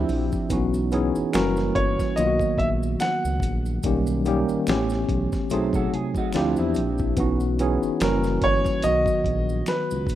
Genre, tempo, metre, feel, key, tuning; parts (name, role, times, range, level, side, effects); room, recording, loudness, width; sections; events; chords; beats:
R&B, neo-soul; 72 BPM; 4/4; swing 56% on 16ths; B major; A4 = 440 Hz
electric guitar through a small old amp; second line; 0.0-0.5, 5.5-7.2 s; C4 to B#4; -32 LUFS; right 6 dB; analog chorus
tine electric piano; accompaniment; 0.0-10.2 s; D#3 to G#4; -24 LUFS; equal; overdrive, medium stereo tremolo
smooth gliding synth bass; bass; 0.0-10.2 s; F#1 to E2; -26 LUFS; equal
dusty soul sampler-style drum kit; drums; 0.1-10.2 s; hi-hat, kick drum, snare drum; -28 LUFS; equal
maracas and finger snaps; percussion; 0.1-10.2 s; -43 LUFS; equal
warm grand piano; melody; 1.3-10.2 s; A#4 to F#5; -24 LUFS; equal
light reverb, studio reverb; rough home demo mix; -20 LUFS; side -12 dB against mid
0.0-10.2 A section
0.0 Dm11; 0.5 C#m11/B; 1.3 F#7b9; 2.2 Bmaj7; 3.8 D#7/B; 4.7 A9; 5.5 G#7b9/B; 6.3 Dm11; 7.2 C#m11/B; 8.0 F#7b9; 8.8 Bmaj7
| 0.50 1.33 2.17 3.00 | 3.83 4.67 5.50 6.33 | 7.17 8.00 8.84 9.67